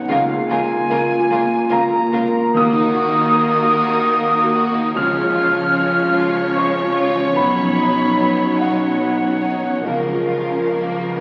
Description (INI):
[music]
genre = cinematic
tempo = 74 BPM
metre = 3/4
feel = rubato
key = Eb minor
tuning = A4 = 440 Hz
[part]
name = small flute group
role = second line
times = 0.0-11.2 s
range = F5 to F6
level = -22 LUFS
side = equal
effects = none
[part]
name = dark baby grand piano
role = accompaniment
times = 0.0-11.2 s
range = B1 to F6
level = -26 LUFS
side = equal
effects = none
[part]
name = concert harp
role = arpeggios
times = 0.0-11.2 s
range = B2 to C#6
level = -31 LUFS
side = equal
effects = none
[part]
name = rich symphonic violin section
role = melody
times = 0.1-11.2 s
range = Bb4 to Db5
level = -30 LUFS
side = equal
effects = none
[part]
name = warm symphonic violin section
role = second line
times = 0.1-11.2 s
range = Ab3 to Gb4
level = -28 LUFS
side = equal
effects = none
[part]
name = warm symphonic viola section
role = accompaniment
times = 0.1-11.2 s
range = F3 to Bb3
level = -31 LUFS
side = equal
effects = none
[part]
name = mellow French horn section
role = sustained chords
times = 0.1-11.2 s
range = Bb3 to Bb4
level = -23 LUFS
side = equal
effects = none
[part]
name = rich symphonic cello section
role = bass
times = 0.1-11.2 s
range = B2 to Eb3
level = -30 LUFS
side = equal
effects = none
[part]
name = rich symphonic double bass section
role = bass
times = 0.1-11.2 s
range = B1 to Eb2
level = -35 LUFS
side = equal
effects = none
[part]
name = timpani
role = percussion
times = 2.5-3.7 s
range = Eb3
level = -32 LUFS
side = equal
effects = none
[sound]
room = wet concert hall reverb, RT60 2.1 s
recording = very old 78 rpm record, vinyl crackle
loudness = -17 LUFS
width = mono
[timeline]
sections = 0.0-11.2 A section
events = none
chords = 0.1 Bbm/Db; 2.5 Ebm; 5.0 Db; 7.4 Badd9; 9.8 Bbm/Db